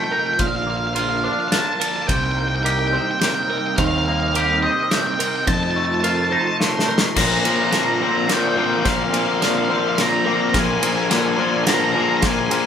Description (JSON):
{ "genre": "post-rock", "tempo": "106 BPM", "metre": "3/4", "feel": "straight", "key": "Bb mixolydian from 7.2 s", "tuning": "A4 = 440 Hz", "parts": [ { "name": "octave-fuzz lead guitar", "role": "melody", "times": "0.0-12.7 s", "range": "Eb5 to C6", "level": "-22 LUFS", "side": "right 1 dB", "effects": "distortion" }, { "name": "analog string pad", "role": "sustained chords", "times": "0.0-12.7 s", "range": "C3 to F5", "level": "-28 LUFS", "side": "right 3 dB", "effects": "ensemble chorus" }, { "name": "twangy electric guitar", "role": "arpeggios", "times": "0.0-12.7 s", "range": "F2 to G4", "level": "-25 LUFS", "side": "equal", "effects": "phaser" }, { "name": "twelve-string electric guitar", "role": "arpeggios", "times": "0.0-12.7 s", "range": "Bb4 to C5", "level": "-31 LUFS", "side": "right 3 dB", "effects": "spring reverb" }, { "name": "fuzz fingered electric bass", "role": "bass", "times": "0.4-12.4 s", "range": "Bb1 to F2", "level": "-25 LUFS", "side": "equal", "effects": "overdrive" }, { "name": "loose indie drum kit", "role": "drums", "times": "0.4-12.6 s", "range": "crash cymbal, kick drum, ride cymbal, snare drum", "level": "-23 LUFS", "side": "equal", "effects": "none" }, { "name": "crunchy overdriven guitar", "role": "riff", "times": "7.2-12.7 s", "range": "Bb2 to Bb3", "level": "-20 LUFS", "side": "left 5 dB", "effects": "none" } ], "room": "wet studio ambience, RT60 0.5 s", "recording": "band playing live in one room", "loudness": "-17 LUFS", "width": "side -8 dB against mid", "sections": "0.0-7.2 A section; 7.2-12.7 B section", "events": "drum fill 6.6-7.2, 7.2-12.7; build-up 7.2-12.7", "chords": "0.4 Bb; 2.1 Cm7; 3.8 Eb6; 5.5 F7; 7.2 Bbadd9; 10.5 Bb7" }